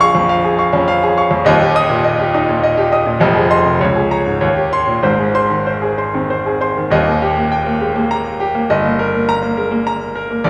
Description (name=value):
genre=classical, virtuoso piano study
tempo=102 BPM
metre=3/4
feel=rubato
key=Ab major, Eb major from 6.9 s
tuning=A4 = 440 Hz
part: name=clear baby grand piano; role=solo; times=0.0-10.5 s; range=Eb1 to Eb6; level=-15 LUFS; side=equal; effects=none
room=wet recital hall reverb, RT60 1.6 s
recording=heard from further back in the room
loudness=-15 LUFS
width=mono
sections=0.0-6.9 A section; 6.9-10.5 B section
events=none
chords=0.0 Bbm7; 1.5 Eb; 3.2 Fm7; 3.8 Bbm7/Db; 4.4 Eb6; 5.0 Ab; 6.9 Eb; 8.7 Eb/G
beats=0.30 0.88 | 1.46 2.04 2.63 | 3.21 3.81 4.42 | 5.04 5.66 6.29 | 6.91 7.51 8.10 | 8.69 9.28 9.86 | 10.45